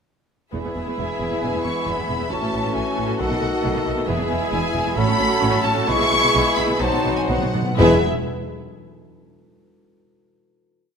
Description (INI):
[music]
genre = classical, dramatic, fast romantic movement for symphony orchestra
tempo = 120-138 BPM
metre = 4/4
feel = straight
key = E major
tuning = A4 = 443 Hz
[part]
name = clear clarinet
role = second line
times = 0.5-8.0 s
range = C#4 to G#4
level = -30 LUFS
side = left 3 dB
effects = none
[part]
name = clear symphonic violin section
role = second line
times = 0.5-8.1 s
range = F#4 to E5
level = -28 LUFS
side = left 2 dB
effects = none
[part]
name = mellow cor anglais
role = second line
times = 0.5-8.0 s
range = G#4 to C#5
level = -29 LUFS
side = right 2 dB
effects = none
[part]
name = mellow bassoon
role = accompaniment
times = 0.5-8.0 s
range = D#3 to G#3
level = -28 LUFS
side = right 2 dB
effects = none
[part]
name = rich symphonic viola section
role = accompaniment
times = 0.5-8.0 s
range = B3 to F#4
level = -28 LUFS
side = right 1 dB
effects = none
[part]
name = warm French horn section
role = sustained chords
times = 0.5-8.0 s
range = G#3 to G#4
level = -28 LUFS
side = left 5 dB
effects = none
[part]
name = rich studio cello section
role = bass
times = 0.5-8.1 s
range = E2 to B2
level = -28 LUFS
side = right 2 dB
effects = none
[part]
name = rich studio double bass section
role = bass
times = 0.5-8.1 s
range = E1 to B1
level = -28 LUFS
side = right 3 dB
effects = none
[part]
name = warm symphonic violin section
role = melody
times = 1.0-8.1 s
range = E5 to C#6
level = -25 LUFS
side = left 1 dB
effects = none
[part]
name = mellow hollow silver concert flute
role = second line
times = 1.0-8.0 s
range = B4 to C#6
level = -29 LUFS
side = left 3 dB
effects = none
[part]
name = timpani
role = percussion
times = 3.2-3.8, 6.8-8.0 s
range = E2 to B2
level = -26 LUFS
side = left 1 dB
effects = none
[sound]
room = moderate scoring stage reverb, RT60 1.7 s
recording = none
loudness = -18 LUFS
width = side -6 dB against mid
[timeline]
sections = 0.5-7.8 A section; 7.8-9.7 final chord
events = slowing down 3.2-7.8; timpani fill 6.8-7.8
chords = 0.5 E; 2.3 A6; 3.2 B7; 4.1 E; 5.0 F#m/A; 5.9 E/B; 6.8 B; 7.8 E